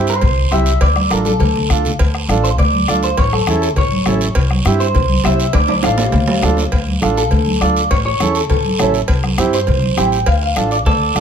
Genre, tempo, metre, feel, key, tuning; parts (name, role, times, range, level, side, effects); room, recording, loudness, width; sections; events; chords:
latin, cumbia; 203 BPM; 4/4; straight; D minor; A4 = 440 Hz
mellow accordion; accompaniment; 0.0-11.2 s; C4 to A4; -20 LUFS; right 6 dB
upright bass; bass; 0.0-11.2 s; A1 to G2; -18 LUFS; equal
electric guitar at the edge of break-up; melody; 0.1-11.2 s; A4 to G5; -19 LUFS; left 1 dB; spring reverb, tape echo
guiro; percussion; 0.1-11.2 s; -26 LUFS; right 5 dB
bombo; percussion; 0.2-11.2 s; -19 LUFS; left 2 dB
congas; percussion; 0.2-11.2 s; -22 LUFS; equal
cowbell and timbales; percussion; 0.2-11.0 s; -24 LUFS; right 3 dB
clean electric guitar; second line; 10.9-11.2 s; A4; -22 LUFS; right 4 dB
moderate small room reverb, RT60 0.6 s; -12 LUFS; side -8 dB against mid
0.0-6.7 A section; 6.7-11.2 A section
drum fill 1.1-2.0, 5.5-6.7
0.0 C; 0.8 Dm; 3.2 A; 4.4 C; 5.5 Dm; 7.9 A; 9.1 C; 10.3 Dm